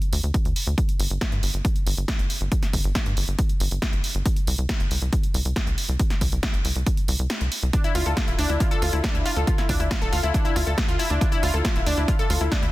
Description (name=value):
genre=uplifting trance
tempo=138 BPM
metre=4/4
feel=straight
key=D minor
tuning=A4 = 440 Hz
part: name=punchy analog drum machine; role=drums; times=0.0-12.7 s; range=hi-hat, snare drum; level=-29 LUFS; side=equal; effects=overdrive, sidechain pumping on hats
part: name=tight sequencer bass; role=bass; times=0.1-12.7 s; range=D1 to G2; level=-24 LUFS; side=equal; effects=sidechain pumping
part: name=electronic kick drum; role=drums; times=0.3-12.6 s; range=none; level=-24 LUFS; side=equal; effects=overdrive
part: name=analog pluck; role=arpeggios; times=7.7-12.7 s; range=D4 to A4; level=-25 LUFS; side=left 2 dB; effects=chorus, cassette tape, sidechain pumping, digital delay
room=digital ambience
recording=dense, heavily limited modern master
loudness=-21 LUFS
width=side -17 dB against mid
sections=0.0-12.7 A section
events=kick drops out 7.3-7.7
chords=0.0 N.C.; 4.3 C5; 7.7 Dmadd9